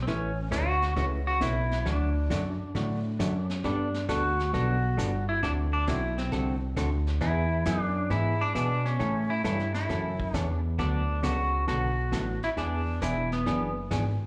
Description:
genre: country, western swing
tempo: 134 BPM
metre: 4/4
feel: swing 68% on 8ths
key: D major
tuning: A4 = 440 Hz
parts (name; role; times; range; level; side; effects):
- clean lap steel guitar; melody; 0.0-13.7 s; B3 to F#4; -33 LUFS; equal; slapback echo
- fat analog bass; bass; 0.0-14.3 s; E1 to B2; -31 LUFS; equal; none
- hollow-body jazz guitar; accompaniment; 0.1-14.0 s; C#3 to B4; -36 LUFS; equal; slapback echo
- vintage brush drum kit; drums; 0.1-14.3 s; brushed snare drum, hi-hat, kick drum, snare drum; -41 LUFS; equal; none
room: light reverb, studio ambience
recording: live gig heard through the venue's PA, club reverb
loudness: -28 LUFS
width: mono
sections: 0.0-14.3 A section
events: none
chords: 0.1 Aadd9; 1.9 D; 3.6 Gadd9; 5.4 D7; 7.2 E; 9.0 A; 10.8 D6; 12.6 E7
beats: | 0.07 0.52 0.97 1.41 | 1.86 2.31 2.75 3.20 | 3.65 4.09 4.54 4.98 | 5.43 5.88 6.32 6.77 | 7.21 7.66 8.10 8.55 | 9.00 9.44 9.89 10.34 | 10.78 11.23 11.68 12.12 | 12.57 13.02 13.46 13.91

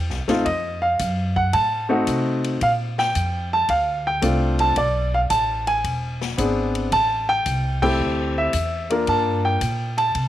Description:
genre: jazz piano trio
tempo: 111 BPM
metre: 4/4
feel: swing 68% on 8ths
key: F major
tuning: A4 = 440 Hz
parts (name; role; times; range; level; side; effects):
- warm baby grand piano; melody; 0.0-10.3 s; A3 to A5; -20 LUFS; equal; none
- upright bass; bass; 0.0-10.3 s; E1 to C3; -25 LUFS; equal; none
- swinging big-band drum kit; drums; 0.1-10.3 s; crash cymbal, hi-hat, kick drum, ride cymbal, snare drum; -32 LUFS; left 5 dB; none
room: light reverb, small room ambience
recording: 1960s-style stereo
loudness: -19 LUFS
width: side -12 dB against mid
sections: 0.0-10.3 A section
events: band accent 7.7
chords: 0.5 F7b9; 2.6 Bbmaj7; 4.8 Bm7; 5.8 E7b13; 6.9 Am7; 9.1 Gm7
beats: | 0.46 0.99 1.53 2.07 | 2.61 3.15 3.68 4.22 | 4.76 5.30 5.84 6.38 | 6.92 7.45 7.99 8.53 | 9.07 9.61 10.15

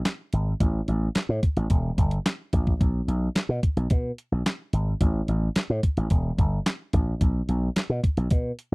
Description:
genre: early-eighties boogie funk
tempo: 109 BPM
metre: 4/4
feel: straight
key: unclear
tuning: A4 = 435 Hz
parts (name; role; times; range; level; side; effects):
- crisp 8-bit digital drum machine; drums; 0.1-8.7 s; handclaps, hi-hat, kick drum, snare drum; -23 LUFS; equal; none
- slap bass with an envelope filter; bass; 0.3-8.7 s; E1 to B2; -24 LUFS; equal; none
room: little or no reverb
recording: dry, close 1970s-style studio recording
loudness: -22 LUFS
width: side -33 dB against mid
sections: 0.0-8.7 A section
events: none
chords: none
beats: 0.05 | 0.60 1.15 1.71 2.25 | 2.81 3.36 3.91 4.46 | 5.01 5.56 6.11 6.66 | 7.21 7.76 8.31

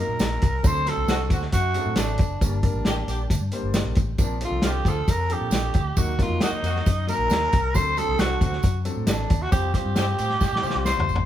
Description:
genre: uptempo 1960s-style soul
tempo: 135 BPM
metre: 4/4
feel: straight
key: unclear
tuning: A4 = 440 Hz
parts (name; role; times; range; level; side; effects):
- growling tenor saxophone; melody; 0.0-11.3 s; D4 to C5; -26 LUFS; right 1 dB; none
- warm grand piano; accompaniment; 0.0-11.1 s; F3 to C5; -32 LUFS; left 2 dB; none
- vintage muted fingered electric bass; bass; 0.1-11.3 s; F#1 to C3; -27 LUFS; equal; none
- warm soul drum kit; drums; 0.2-11.3 s; hi-hat, kick drum, snare drum, toms; -23 LUFS; equal; none
- tambourine; percussion; 0.2-11.2 s; none; -40 LUFS; right 4 dB; none
- mellow horn section; second line; 1.1-10.3 s; D3 to G4; -32 LUFS; left 1 dB; none
room: light reverb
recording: band playing live in one room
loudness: -20 LUFS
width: side -11 dB against mid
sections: 0.0-11.3 A section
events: drum fill 10.4-11.3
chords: 0.0 Ebm; 0.6 D7; 2.4 Gm; 4.2 Bbadd9; 6.0 Ebm; 7.7 D7; 9.5 Fsus2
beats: 0.20 | 0.65 1.09 1.53 1.98 | 2.42 2.86 3.31 3.75 | 4.19 4.64 5.08 5.52 | 5.97 6.41 6.85 7.30 | 7.74 8.19 8.63 9.07 | 9.52 9.97 10.41 10.86

